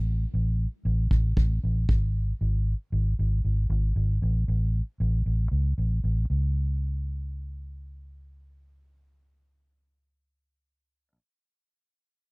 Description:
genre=piano-driven pop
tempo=116 BPM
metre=4/4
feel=straight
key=unclear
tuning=A4 = 440 Hz
part: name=vintage muted fingered electric bass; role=bass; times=0.0-11.2 s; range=G#1 to C#2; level=-25 LUFS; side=equal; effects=none
part: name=kick drum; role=drums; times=1.1-2.0 s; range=none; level=-24 LUFS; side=equal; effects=none
room=little or no reverb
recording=dry, close 1970s-style studio recording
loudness=-24 LUFS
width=side -35 dB against mid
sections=0.0-6.3 A section; 6.3-10.4 B section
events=none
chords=none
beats=| 0.07 0.59 1.11 1.63 | 2.15 2.66 3.18 3.70 | 4.22 4.74 5.25 5.77 | 6.29 6.81 7.33 7.85 | 8.37 8.88 9.40 9.92

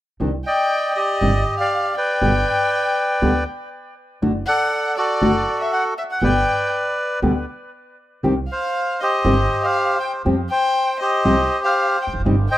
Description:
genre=tango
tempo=120 BPM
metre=4/4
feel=rubato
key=C harmonic minor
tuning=A4 = 443 Hz
part: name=nylon-string guitar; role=accompaniment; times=0.2-12.3 s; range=B2 to G4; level=-19 LUFS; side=left 1 dB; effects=none
part: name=upright bass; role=bass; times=0.2-12.5 s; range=E1 to F2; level=-23 LUFS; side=right 1 dB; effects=none
part: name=bandoneon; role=melody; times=0.5-12.6 s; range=F#4 to G5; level=-19 LUFS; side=equal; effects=tape echo
part: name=warm violin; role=second line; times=0.5-12.6 s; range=D5 to G5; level=-26 LUFS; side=left 4 dB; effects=none
room=moderate studio reverb, RT60 0.5 s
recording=rough home demo mix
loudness=-17 LUFS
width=side -14 dB against mid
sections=0.2-12.6 A section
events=none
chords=0.2 Cmadd9; 2.2 G; 4.2 D/F#; 6.2 G; 8.2 Cm; 10.3 Fsus2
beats=| 0.20 0.71 1.21 1.72 | 2.22 2.72 3.23 3.73 | 4.22 4.72 5.22 5.72 | 6.22 6.73 7.23 7.74 | 8.24 8.75 9.25 9.76 | 10.26 10.75 11.25 11.75 | 12.25

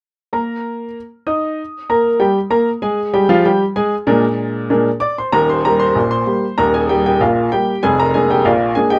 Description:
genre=ragtime piano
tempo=96 BPM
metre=2/4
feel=straight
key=Eb major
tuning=A4 = 440 Hz
part: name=clear upright piano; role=solo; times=0.3-9.0 s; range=Eb1 to Eb6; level=-16 LUFS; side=equal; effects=none
room=moderate small room reverb, RT60 0.5 s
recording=none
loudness=-16 LUFS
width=mono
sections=0.3-5.3 A section; 5.3-9.0 B section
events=none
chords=0.3 Eb; 2.8 Bb7; 5.3 Eb; 7.8 Bb7/F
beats=| 0.33 0.95 | 1.58 2.20 | 2.82 3.44 | 4.07 4.69 | 5.33 5.95 | 6.58 7.20 | 7.83 8.45

